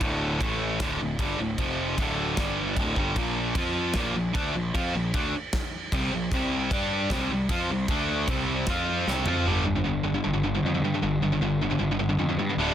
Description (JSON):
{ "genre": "heavy metal", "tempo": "153 BPM", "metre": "4/4", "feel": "straight", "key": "unclear", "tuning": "A4 = 440 Hz", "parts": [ { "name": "distorted electric guitar", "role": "riff", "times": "0.0-12.7 s", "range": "D2 to G4", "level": "-26 LUFS", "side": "equal", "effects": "overdrive" }, { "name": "fuzz picked electric bass", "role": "bass", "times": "0.0-12.7 s", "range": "D1 to G2", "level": "-31 LUFS", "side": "equal", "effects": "overdrive" }, { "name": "modern studio drum kit", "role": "drums", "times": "0.0-9.3 s", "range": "crash cymbal, kick drum, snare drum, toms", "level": "-30 LUFS", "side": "equal", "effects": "none" } ], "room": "light reverb", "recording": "dense, heavily limited modern master", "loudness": "-24 LUFS", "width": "side -10 dB against mid", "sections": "0.0-9.5 A section; 9.5-12.7 B section", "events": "drum fill 9.1-9.5", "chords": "0.4 A5; 0.8 D5; 1.6 F5; 2.0 D5; 2.4 G5; 2.8 D5; 3.2 Bb5; 3.6 F5; 4.0 Bb5; 6.3 C5; 6.7 G5; 7.1 C5; 7.9 D5; 8.3 C5; 8.7 F5; 9.1 C5; 9.5 G5" }